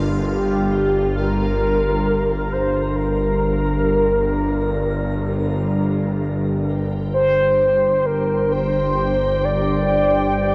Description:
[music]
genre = dark ambient drone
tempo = free time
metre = none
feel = none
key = G minor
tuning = A4 = 440 Hz
[part]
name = dark detuned synth bell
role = arpeggios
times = 0.0-6.7 s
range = none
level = barely audible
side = none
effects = none
[part]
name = bowed-like drone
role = drone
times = 0.0-10.5 s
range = G1 to G2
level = -23 LUFS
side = equal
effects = built-in reverb
[part]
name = bubbling stepped-filter texture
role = texture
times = 0.0-10.5 s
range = F4 to G5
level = -34 LUFS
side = equal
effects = chorus, built-in reverb, shimmer reverb
[part]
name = mellow horn-like synth lead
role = melody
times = 0.2-10.5 s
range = G4 to D5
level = -22 LUFS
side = equal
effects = chorus, shimmer reverb, diffuse ambient delay
[sound]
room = wet cathedral reverb, RT60 6.0 s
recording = dark, warm production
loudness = -19 LUFS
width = mono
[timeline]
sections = 0.0-6.7 A section; 6.7-10.5 B section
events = fade-out on synth texture 0.0-6.7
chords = 0.0 Gm7; 6.7 N.C.

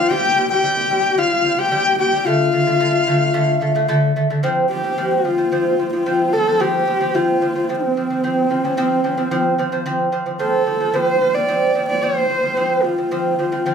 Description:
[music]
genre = mongolian traditional, Mongolian folk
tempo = 110 BPM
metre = 4/4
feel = straight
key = F gong mode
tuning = A4 = 436 Hz
[part]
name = dark horsehead fiddle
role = melody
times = 0.0-13.7 s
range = C4 to D5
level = -19 LUFS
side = left 1 dB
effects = none
[part]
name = bright reedy dizi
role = second line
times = 0.0-3.9 s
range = F5 to G5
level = -18 LUFS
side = left 4 dB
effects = none
[part]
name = lute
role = arpeggios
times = 0.0-13.7 s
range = C3 to C4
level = -19 LUFS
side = right 1 dB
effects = none
[sound]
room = moderate large studio reverb, RT60 0.9 s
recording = band playing live in one room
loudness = -16 LUFS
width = side -7 dB against mid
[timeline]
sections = 0.0-4.4 A section; 4.4-13.7 B section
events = none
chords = 0.1 C5; 2.3 D5; 4.4 F5

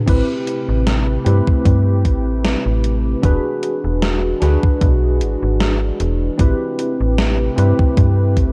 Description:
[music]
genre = vaporwave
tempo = 76 BPM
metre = 4/4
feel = swing 54% on 16ths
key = A dorian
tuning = A4 = 440 Hz
[part]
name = tine electric piano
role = accompaniment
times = 0.0-8.5 s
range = C4 to B4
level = -23 LUFS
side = equal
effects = medium tremolo, analog chorus, analog delay
[part]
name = warbly tape-like pad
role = sustained chords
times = 0.3-8.5 s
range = C3 to B4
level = -29 LUFS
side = equal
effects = chorus, built-in reverb, phaser, vintage 12-bit sampler grit
[part]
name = slap-like FM bass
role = bass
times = 0.1-8.5 s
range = E1 to G2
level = -19 LUFS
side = equal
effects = none
[part]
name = electronic kick drum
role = drums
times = 0.1-8.5 s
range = none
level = -17 LUFS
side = equal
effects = none
[part]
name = gated 80s digital drum machine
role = drums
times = 0.1-8.5 s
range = crash cymbal, hi-hat, snare drum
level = -25 LUFS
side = equal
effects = gated reverb, gated reverb snare
[sound]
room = light reverb, digital ambience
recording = dark, warm production, cassette tape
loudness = -17 LUFS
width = mono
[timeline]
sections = 0.1-8.5 A section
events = none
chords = 0.1 Am9; 3.2 E9; 6.4 Am9

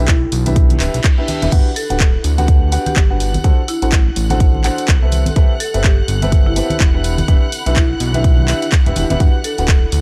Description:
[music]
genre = piano house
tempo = 125 BPM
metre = 4/4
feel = swing 59% on 16ths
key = unclear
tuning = A4 = 441 Hz
[part]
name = clear upright piano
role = riff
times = 0.0-9.7 s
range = C4 to F#5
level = -25 LUFS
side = equal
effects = sidechain pumping
[part]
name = fat analog bass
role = bass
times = 0.0-10.0 s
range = D1 to D2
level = -20 LUFS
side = equal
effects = sidechain pumping
[part]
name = ethereal airy pad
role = texture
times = 0.0-10.0 s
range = C4 to C6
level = -35 LUFS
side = equal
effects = none
[part]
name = marimba with hard mallets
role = melody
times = 0.1-9.6 s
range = E4 to A4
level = -29 LUFS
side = equal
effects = none
[part]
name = electronic kick drum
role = drums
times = 0.1-9.8 s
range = none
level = -15 LUFS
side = equal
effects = none
[part]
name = house drum kit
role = drums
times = 0.1-10.0 s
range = crash cymbal, handclaps, hi-hat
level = -25 LUFS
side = equal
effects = none
[part]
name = tambourine and congas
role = percussion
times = 0.1-10.0 s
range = none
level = -28 LUFS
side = equal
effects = none
[part]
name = reverse cymbal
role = sound effects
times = 0.8-1.5 s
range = none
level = -34 LUFS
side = equal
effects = none
[part]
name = warm studio violin section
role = sustained chords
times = 1.5-10.0 s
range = F#5 to F#6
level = -31 LUFS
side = equal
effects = sidechain pumping
[sound]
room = little or no reverb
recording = dry, gritty hardware recording, cassette tape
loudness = -14 LUFS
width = mono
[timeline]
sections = 0.0-10.0 A section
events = reverse cymbal 0.8-1.5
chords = 0.0 Em7; 1.5 Gmaj7; 3.4 D7; 5.1 Am9; 7.0 Em7; 9.2 Gmaj7

